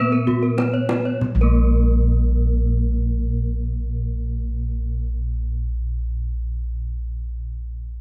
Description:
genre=Balinese gamelan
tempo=46 BPM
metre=4/4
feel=straight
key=unclear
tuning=A4 = 440 Hz
part: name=gamelan-type bronze metallophone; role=melody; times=0.0-5.5 s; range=Bb3 to Cb4+20c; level=-28 LUFS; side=equal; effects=none
part: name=gamelan-type bronze metallophone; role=accompaniment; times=0.0-5.5 s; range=Bb3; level=-34 LUFS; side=equal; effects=none
part: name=gamelan-type bronze metallophone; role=arpeggios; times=0.0-5.5 s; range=Bb4 to Db5-30c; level=-33 LUFS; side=equal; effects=none
part: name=gamelan-type bossed gongs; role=bass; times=0.0-5.5 s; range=Bb1 to Bb2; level=-23 LUFS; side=equal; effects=none
part: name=gamelan-type bronze metallophone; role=arpeggios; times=0.1-5.5 s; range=Gb4-20c to Cb5+20c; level=-33 LUFS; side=equal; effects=none
part: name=kendang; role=percussion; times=0.3-1.8 s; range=none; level=-31 LUFS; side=equal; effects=none
room=light reverb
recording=close, detailed microphones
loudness=-22 LUFS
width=mono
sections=0.0-1.2 A section; 1.2-6.4 B section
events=drum fill 0.0-1.2; slowing down 0.0-1.2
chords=none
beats=| 1.23 2.52 3.82 5.12

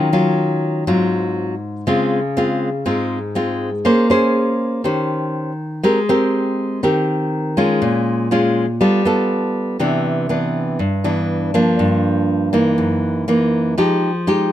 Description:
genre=bossa nova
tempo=121 BPM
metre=4/4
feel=straight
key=Ab major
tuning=A4 = 440 Hz
part: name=nylon-string guitar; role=solo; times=0.0-14.5 s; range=F#2 to C5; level=-15 LUFS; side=equal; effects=none
room=light reverb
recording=close, detailed microphones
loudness=-16 LUFS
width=side -12 dB against mid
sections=0.0-9.8 A section; 9.8-14.5 B section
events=none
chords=0.0 Ebm9; 0.9 Ab6; 1.9 Dbmaj7; 3.9 Bbm9; 4.8 Eb6; 5.8 Abmaj9; 7.8 Bbm7; 8.8 G9; 9.8 Cmaj9; 11.8 Gm7; 12.8 F#6; 13.8 Fm9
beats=0.38 0.87 1.37 | 1.86 2.36 2.86 3.35 | 3.85 4.35 4.84 5.34 | 5.84 6.33 6.83 7.33 | 7.82 8.32 8.81 9.31 | 9.81 10.30 10.80 11.29 | 11.79 12.29 12.78 13.28 | 13.77 14.27

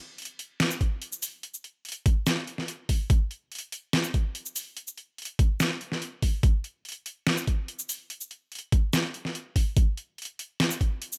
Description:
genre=dubstep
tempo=144 BPM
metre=4/4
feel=half-time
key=none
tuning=none
part: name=dubstep drum kit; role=drums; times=0.2-11.2 s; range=hi-hat, shaker, snare drum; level=-31 LUFS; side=equal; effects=overdrive
part: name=electronic kick drum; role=drums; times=0.8-10.9 s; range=none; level=-25 LUFS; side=equal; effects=overdrive
room=little or no reverb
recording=none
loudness=-28 LUFS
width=mono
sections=0.0-11.2 A section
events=none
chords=none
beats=0.18 0.60 1.02 | 1.43 1.85 2.27 2.68 | 3.10 3.52 3.93 4.35 | 4.77 5.18 5.60 6.02 | 6.43 6.85 7.27 7.68 | 8.10 8.52 8.93 9.35 | 9.77 10.18 10.60 11.02

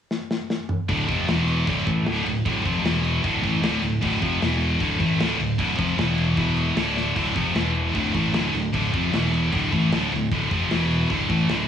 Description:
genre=heavy metal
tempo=153 BPM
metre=4/4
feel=straight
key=D minor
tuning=A4 = 437 Hz
part: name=modern studio drum kit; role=drums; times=0.1-11.6 s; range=crash cymbal, kick drum, snare drum, toms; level=-28 LUFS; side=left 1 dB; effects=cassette tape
part: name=scooped high-gain guitar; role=riff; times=0.9-11.7 s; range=D2 to A3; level=-22 LUFS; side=equal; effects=distortion, cassette tape
part: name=modern bright fingered electric bass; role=bass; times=0.9-11.7 s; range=D1 to A1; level=-26 LUFS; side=equal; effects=none
room=small room ambience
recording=home recording on cassette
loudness=-20 LUFS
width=side -8 dB against mid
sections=0.9-11.7 A section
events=drum fill 0.1-0.9, 7.0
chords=0.0 N.C.; 0.9 Dm; 1.3 E5; 1.7 Dm; 2.9 E5; 3.2 Dm; 4.4 E5; 4.8 Dm; 6.0 E5; 6.8 Dm; 7.6 E5; 7.9 Dm; 9.1 E5; 9.5 Dm; 10.7 E5; 11.1 D5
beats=0.10 0.50 | 0.89 1.28 1.68 2.07 | 2.46 2.85 3.24 3.64 | 4.03 4.42 4.81 5.20 | 5.59 5.99 6.38 6.77 | 7.16 7.55 7.95 8.34 | 8.73 9.13 9.52 9.92 | 10.31 10.71 11.10 11.50

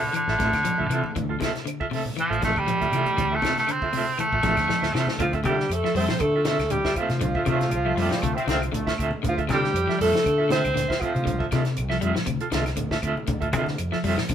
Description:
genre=afrobeat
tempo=119 BPM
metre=4/4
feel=swing 54% on 16ths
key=D minor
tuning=A4 = 439 Hz
part: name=raspy baritone saxophone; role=melody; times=0.0-5.2 s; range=D3 to C4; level=-23 LUFS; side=right 1 dB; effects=none
part: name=electric guitar at the edge of break-up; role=arpeggios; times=0.0-14.3 s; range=C3 to A3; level=-30 LUFS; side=left 5 dB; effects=none
part: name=clean electric guitar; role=stabs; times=0.0-14.2 s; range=C4 to E5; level=-30 LUFS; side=right 4 dB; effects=tremolo
part: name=congas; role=percussion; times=0.0-14.3 s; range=none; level=-33 LUFS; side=right 1 dB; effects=none
part: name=compact cocktail drum kit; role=drums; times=0.1-14.3 s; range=hi-hat, kick drum, snare drum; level=-32 LUFS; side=equal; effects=none
part: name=claves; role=percussion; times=0.2-14.3 s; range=none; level=-40 LUFS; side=left 4 dB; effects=none
part: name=fingered electric bass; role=bass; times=0.3-14.3 s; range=A1 to D3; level=-28 LUFS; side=equal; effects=none
part: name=breathy alto saxophone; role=melody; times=5.2-11.5 s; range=F4 to C5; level=-26 LUFS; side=equal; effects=none
part: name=breathy tenor saxophone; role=second line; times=5.2-11.5 s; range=F3 to C4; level=-31 LUFS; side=right 2 dB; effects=none
part: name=brilliant trombone section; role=second line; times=7.5-9.1 s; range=F3 to C4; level=-31 LUFS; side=left 2 dB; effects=none
room=moderate studio reverb, RT60 0.8 s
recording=band playing live in one room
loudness=-21 LUFS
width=side -9 dB against mid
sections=0.0-5.2 A section; 5.2-14.3 B section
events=baritone saxophone solo 0.0-5.2; drum fill 4.7-5.2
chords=0.0 Dm9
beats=0.15 0.65 | 1.16 1.66 2.17 2.67 | 3.18 3.69 4.19 4.70 | 5.20 5.71 6.21 6.72 | 7.22 7.73 8.23 8.74 | 9.24 9.75 10.25 10.76 | 11.26 11.77 12.27 12.78 | 13.28 13.79 14.29

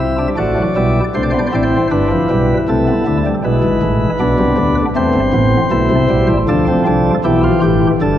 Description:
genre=classical, baroque-style 4-part fugue for pipe organ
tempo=79 BPM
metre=4/4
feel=straight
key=unclear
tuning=A4 = 440 Hz
part: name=chamber organ, sparkling flutes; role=solo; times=0.0-8.2 s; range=G1 to E5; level=-12 LUFS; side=equal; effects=none
room=wet church reverb, RT60 3.5 s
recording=worn, warbling old tape, cassette tape, warbly pitch drift, nothing above 10.6 kHz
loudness=-12 LUFS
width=side -11 dB against mid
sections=0.4-8.2 A section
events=none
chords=0.4 D7/A; 1.9 G; 3.4 E7; 5.0 Am; 6.5 Dm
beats=| 0.38 1.15 1.92 2.68 | 3.44 4.20 4.96 5.72 | 6.48 7.25 8.01

